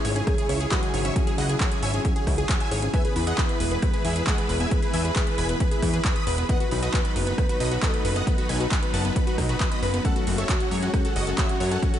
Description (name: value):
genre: uplifting trance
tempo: 135 BPM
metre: 4/4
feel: straight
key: unclear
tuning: A4 = 441 Hz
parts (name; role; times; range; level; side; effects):
- big supersaw lead; melody; 0.0-12.0 s; E4 to D#6; -31 LUFS; equal; sidechain pumping, ping-pong delay
- dark concert grand piano; second line; 0.0-12.0 s; F#4 to D#6; -39 LUFS; equal; none
- felt-muted upright piano; second line; 0.0-12.0 s; F#3 to B4; -34 LUFS; left 1 dB; analog delay
- lush unison pad; sustained chords; 0.0-12.0 s; C#3 to B4; -32 LUFS; equal; chorus, sidechain pumping
- wide unison pluck; arpeggios; 0.0-12.0 s; B3 to C#5; -32 LUFS; left 2 dB; cassette tape, sidechain pumping, analog delay
- fat analog bass; bass; 0.0-11.8 s; E1 to F#2; -26 LUFS; equal; sidechain pumping
- big-room dance drum kit; drums; 0.0-12.0 s; handclaps, hi-hat, rim click; -31 LUFS; right 1 dB; overdrive, studio ambience
- electronic kick drum; drums; 0.3-11.9 s; none; -25 LUFS; equal; studio ambience
room: light reverb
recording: nothing above 10.6 kHz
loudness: -21 LUFS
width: side -10 dB against mid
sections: 0.0-12.0 A section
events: none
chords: 0.0 C#m; 2.9 E; 6.5 B; 10.0 F#m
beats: 0.27 0.71 | 1.16 1.60 2.05 2.49 | 2.94 3.38 3.83 4.27 | 4.71 5.16 5.60 6.05 | 6.49 6.94 7.38 7.83 | 8.27 8.71 9.16 9.60 | 10.05 10.49 10.94 11.38 | 11.83